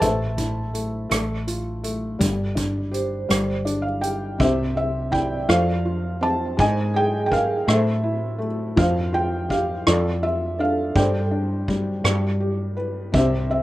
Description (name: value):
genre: acoustic folk-pop ballad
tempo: 55 BPM (dotted quarters)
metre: 6/8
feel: straight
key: unclear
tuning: A4 = 440 Hz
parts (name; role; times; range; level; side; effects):
- felt-muted upright piano; melody; 0.0-13.6 s; C3 to A5; -23 LUFS; equal; none
- vibraphone with medium hard mallets; arpeggios; 0.0-11.3 s; Ab4 to D5; -29 LUFS; right 4 dB; slapback echo
- woody fretless electric bass; bass; 0.0-13.6 s; G1 to A2; -25 LUFS; equal; none
- soft-mallet drum kit; drums; 0.0-13.6 s; hi-hat, kick drum, ride cymbal, rim click; -28 LUFS; equal; none
room: little or no reverb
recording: none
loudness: -20 LUFS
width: side -16 dB against mid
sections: 0.0-4.4 A section; 4.4-13.6 B section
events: felt piano fill 3.3-4.4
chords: 0.0 Am; 2.2 Gsus4; 4.4 C; 5.5 F; 6.6 Absus2; 7.7 Am; 8.8 Fsus2; 9.9 Dm/F; 11.0 Gsus4; 12.0 G